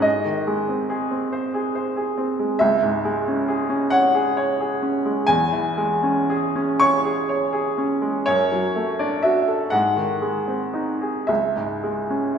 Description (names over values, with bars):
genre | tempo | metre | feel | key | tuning
classical, romantic nocturne for solo piano | 36-48 BPM (dotted quarters) | 6/8 | rubato | C# minor | A4 = 439 Hz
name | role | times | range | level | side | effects
bright upright piano | solo | 0.0-12.4 s | C#2 to C#6 | -19 LUFS | equal | none
room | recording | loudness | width
wet recital hall reverb, RT60 1.5 s | recorded in a church or concert hall | -19 LUFS | side -7 dB against mid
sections
0.0-12.4 A section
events
none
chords
0.0 G#; 2.6 C#m; 5.3 C#m/E; 8.3 D/F#; 9.7 G#; 11.3 C#m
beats
| 0.04 1.32 | 2.61 3.91 | 5.28 6.80 | 8.27 9.72 | 11.29